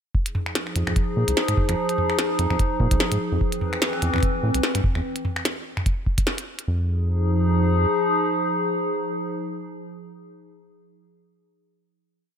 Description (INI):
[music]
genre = IDM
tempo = 147 BPM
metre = 4/4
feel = swing 56% on 16ths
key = unclear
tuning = A4 = 440 Hz
[part]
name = warbly tape-like pad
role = sustained chords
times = 0.5-10.7 s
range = E3 to B4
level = -24 LUFS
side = left 1 dB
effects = chorus, built-in reverb
[part]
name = electronic kick drum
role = drums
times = 0.1-6.3 s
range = none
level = -22 LUFS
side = equal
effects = none
[part]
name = glitchy drum kit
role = drums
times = 0.3-6.7 s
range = finger snaps, hi-hat, snare drum, toms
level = -26 LUFS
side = equal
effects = none
[part]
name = round analog bass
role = bass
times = 0.8-7.9 s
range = B1 to Bb2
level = -22 LUFS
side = equal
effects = none
[sound]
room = light reverb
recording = none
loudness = -21 LUFS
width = side -8 dB against mid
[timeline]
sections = 0.1-6.7 groove; 6.7-9.9 final chord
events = none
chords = 0.1 Fm7; 3.4 Cmaj7/E; 5.0 N.C.; 6.7 Fm7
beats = | 0.15 0.56 0.96 1.37 | 1.78 2.19 2.60 3.00 | 3.41 3.82 4.23 4.64 | 5.04 5.45 5.86 6.27 | 6.68 7.08 7.49 7.90 | 8.31 8.72 9.13 9.53